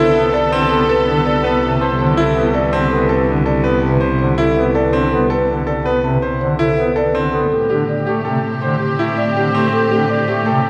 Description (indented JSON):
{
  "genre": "classical, minimalist pattern music",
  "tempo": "163 BPM",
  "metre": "6/4",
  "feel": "straight",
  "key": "A minor from 7.5 s",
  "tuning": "A4 = 444 Hz",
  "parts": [
    { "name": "marimba with soft mallets", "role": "melody", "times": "0.0-10.7 s", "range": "G4 to A5", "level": "-22 LUFS", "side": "equal", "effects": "none" },
    { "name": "mellow oboe", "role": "second line", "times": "0.0-2.9, 7.5-10.7 s", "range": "G4 to A4", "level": "-25 LUFS", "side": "equal", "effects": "none" },
    { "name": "clear studio string section", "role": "sustained chords", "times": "0.0-2.9, 7.5-10.7 s", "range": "B3 to A4", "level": "-27 LUFS", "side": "equal", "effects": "none" },
    { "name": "bright grand piano", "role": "arpeggios", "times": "0.0-10.7 s", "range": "C4 to C5", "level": "-22 LUFS", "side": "equal", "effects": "none" },
    { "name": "clear cello", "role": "bass", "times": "0.0-10.7 s", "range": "C2 to A2", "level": "-23 LUFS", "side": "equal", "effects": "none" },
    { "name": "pipe organ, foundations", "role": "accompaniment", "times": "0.2-10.6 s", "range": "C3 to B3", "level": "-22 LUFS", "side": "equal", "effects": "none" }
  ],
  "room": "wet concert hall reverb, RT60 1.8 s",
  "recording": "none",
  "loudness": "-16 LUFS",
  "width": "mono",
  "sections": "0.0-7.5 A section; 7.5-10.7 B section",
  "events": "none",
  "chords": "0.0 Amadd9/C; 7.5 Am7"
}